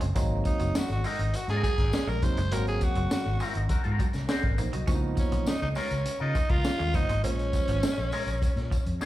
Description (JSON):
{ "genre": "funk", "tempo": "102 BPM", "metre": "4/4", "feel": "straight", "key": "unclear", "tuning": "A4 = 440 Hz", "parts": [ { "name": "clean electric guitar", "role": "riff", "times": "0.0-9.0 s", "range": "F3 to Db4", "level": "-41 LUFS", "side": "right 5 dB", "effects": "slapback echo" }, { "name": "barky tine electric piano", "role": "stabs", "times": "0.0-7.9 s", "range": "F3 to Eb5", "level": "-34 LUFS", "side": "right 3 dB", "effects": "overdrive, phaser, slapback echo" }, { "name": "vintage muted fingered electric bass", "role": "bass", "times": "0.0-9.0 s", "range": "F1 to Db3", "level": "-29 LUFS", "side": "equal", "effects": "none" }, { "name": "crunchy breakbeat drum kit", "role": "drums", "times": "0.0-9.1 s", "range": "hi-hat, kick drum, snare drum", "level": "-29 LUFS", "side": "equal", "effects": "none" }, { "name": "tambourine", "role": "percussion", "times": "0.2-9.1 s", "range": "none", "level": "-47 LUFS", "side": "left 4 dB", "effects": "none" }, { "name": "breathy tenor saxophone", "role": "melody", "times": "0.5-9.0 s", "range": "Db4 to C5", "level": "-32 LUFS", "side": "equal", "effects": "slapback echo" }, { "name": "electric guitar with an envelope filter", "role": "accompaniment", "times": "1.0-9.1 s", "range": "Cb4 to C5", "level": "-36 LUFS", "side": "left 4 dB", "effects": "spring reverb, slapback echo" } ], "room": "little or no reverb", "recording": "live gig heard through the venue's PA, club reverb", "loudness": "-25 LUFS", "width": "side -15 dB against mid", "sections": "0.0-9.1 A section", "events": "none", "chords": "0.2 Ab9; 4.9 Db13; 7.2 Bbm7", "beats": "| 0.16 0.75 1.34 1.93 | 2.52 3.11 3.70 4.29 | 4.88 5.47 6.06 6.65 | 7.24 7.83 8.42 9.01" }